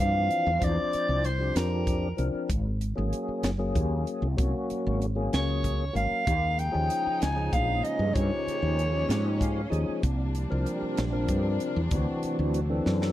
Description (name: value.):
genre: electric jazz fusion.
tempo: 64 BPM (dotted quarters).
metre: 6/8.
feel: straight.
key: unclear.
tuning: A4 = 441 Hz.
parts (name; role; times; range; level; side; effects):
growling soprano saxophone; melody; 0.0-2.3, 5.3-9.7 s; Bb4 to Ab5; -28 LUFS; equal; slapback echo.
tonewheel organ; accompaniment; 0.0-13.1 s; E3 to Ab5; -31 LUFS; left 2 dB; slow rotary speaker, overdrive, chorus vibrato.
woody fretless electric bass; bass; 0.0-13.1 s; Gb1 to Ab2; -28 LUFS; equal; ensemble chorus.
crisp fusion drum kit; drums; 0.0-13.1 s; hi-hat, kick drum, snare drum; -31 LUFS; equal; none.
warm chamber string section; sustained chords; 6.2-13.1 s; C3 to Eb4; -36 LUFS; right 1 dB; none.
room: small room reverb.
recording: dry, close 1970s-style studio recording.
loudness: -25 LUFS.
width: side -13 dB against mid.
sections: 0.0-13.1 A section.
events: tonewheel organ fill 9.1-10.0, 12.9; drum fill 12.9.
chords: 0.0 C9sus4; 2.5 Ab9sus4; 6.3 Eb9sus4; 10.0 C9sus4; 11.9 D9.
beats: | 0.62 1.56 | 2.50 3.44 | 4.38 5.32 | 6.26 7.20 | 8.14 9.09 | 10.03 10.97 | 11.91 12.86.